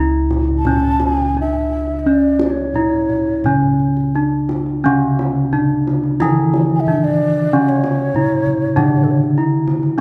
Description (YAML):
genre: Javanese gamelan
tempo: 86-102 BPM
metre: 4/4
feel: straight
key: C# pelog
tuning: A4 = 441 Hz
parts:
  - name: gamelan-type bronze metallophone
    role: melody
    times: 0.0-10.0 s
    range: C#4 to E4-30c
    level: -20 LUFS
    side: equal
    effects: none
  - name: gamelan-type bossed gongs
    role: bass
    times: 0.0-10.0 s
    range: C#2 to D4+20c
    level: -22 LUFS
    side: equal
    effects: none
  - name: kendang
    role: percussion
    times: 0.3-9.9 s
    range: none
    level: -28 LUFS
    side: equal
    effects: none
  - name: breathy low xiao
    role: second line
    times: 0.6-9.2 s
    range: A4 to A5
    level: -24 LUFS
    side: equal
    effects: none
  - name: gamelan-type bronze metallophone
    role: accompaniment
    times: 4.9-10.0 s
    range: C#3 to E3-30c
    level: -21 LUFS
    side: equal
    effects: none
room: moderate concert hall reverb, RT60 1.8 s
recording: dark, warm production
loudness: -16 LUFS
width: mono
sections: 0.0-10.0 A section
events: none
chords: none